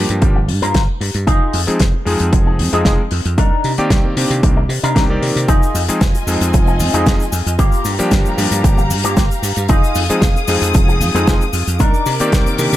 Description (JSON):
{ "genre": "nu-disco, nu disco", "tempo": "114 BPM", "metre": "4/4", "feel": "swing 53% on 16ths", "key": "F dorian", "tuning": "A4 = 440 Hz", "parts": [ { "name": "warm electric grand piano", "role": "accompaniment", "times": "0.0-12.8 s", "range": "Eb3 to D5", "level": "-19 LUFS", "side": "left 1 dB", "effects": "sidechain pumping, ping-pong delay" }, { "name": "dry thumbed slap bass", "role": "bass", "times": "0.0-12.8 s", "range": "F1 to C3", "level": "-18 LUFS", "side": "equal", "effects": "tube saturation" }, { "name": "damped 70s drum kit", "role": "drums", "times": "0.1-12.8 s", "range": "hi-hat, shaker, snare drum", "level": "-22 LUFS", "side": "left 2 dB", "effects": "none" }, { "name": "electric guitar with an envelope filter", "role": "riff", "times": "0.2-12.5 s", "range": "Bb3 to Bb4", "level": "-22 LUFS", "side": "left 2 dB", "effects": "analog chorus, ping-pong delay" }, { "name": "electronic kick drum", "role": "drums", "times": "0.2-12.4 s", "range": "none", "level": "-15 LUFS", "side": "equal", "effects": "none" }, { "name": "dark studio string section", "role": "sustained chords", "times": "5.5-12.8 s", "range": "F4 to Eb6", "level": "-23 LUFS", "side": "left 1 dB", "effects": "sidechain pumping" }, { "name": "cabasa", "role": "percussion", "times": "5.5-12.8 s", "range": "none", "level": "-30 LUFS", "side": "left 4 dB", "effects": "none" } ], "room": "studio reverb", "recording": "none", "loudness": "-12 LUFS", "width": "side -14 dB against mid", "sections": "0.0-12.8 A section", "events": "none", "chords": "0.0 Gm7; 1.3 Fm7; 3.4 Cm9; 5.5 Fm7; 7.6 Gm7; 9.7 Fm7; 11.8 Cm9" }